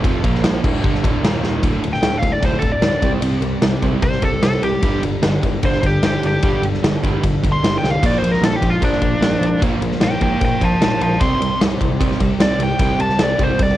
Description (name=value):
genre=hard rock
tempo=150 BPM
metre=4/4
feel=straight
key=unclear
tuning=A4 = 440 Hz
part: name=tonewheel organ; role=sustained chords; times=0.0-13.8 s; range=G3 to F5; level=-32 LUFS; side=left 1 dB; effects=none
part: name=biting overdriven guitar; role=riff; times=0.0-13.8 s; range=D2 to C4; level=-28 LUFS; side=equal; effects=none
part: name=overdriven semi-hollow guitar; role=riff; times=0.0-13.8 s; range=D2 to C4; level=-23 LUFS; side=right 7 dB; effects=none
part: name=scooped high-gain guitar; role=riff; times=0.0-13.8 s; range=D2 to C4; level=-27 LUFS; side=left 6 dB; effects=distortion
part: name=picked electric bass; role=bass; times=0.0-13.7 s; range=D1 to C2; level=-23 LUFS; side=equal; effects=none
part: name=big rock drum kit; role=drums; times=0.0-13.7 s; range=crash cymbal, kick drum, ride cymbal, snare drum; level=-19 LUFS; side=equal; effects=cassette tape
part: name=nasal lead guitar with a parked wah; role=melody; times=1.9-13.8 s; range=D4 to C6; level=-21 LUFS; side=equal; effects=overdrive, cassette tape
room=little or no reverb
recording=home recording on cassette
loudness=-15 LUFS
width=side -14 dB against mid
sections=0.0-1.6 A section; 1.6-13.8 B section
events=drum fill 1.4, 7.8; lead electric guitar solo 1.6-13.8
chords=0.2 Bb5; 0.6 D5; 1.2 Eb5; 1.6 D5; 3.0 Csus2; 4.8 G5; 8.0 Bb; 11.2 Csus2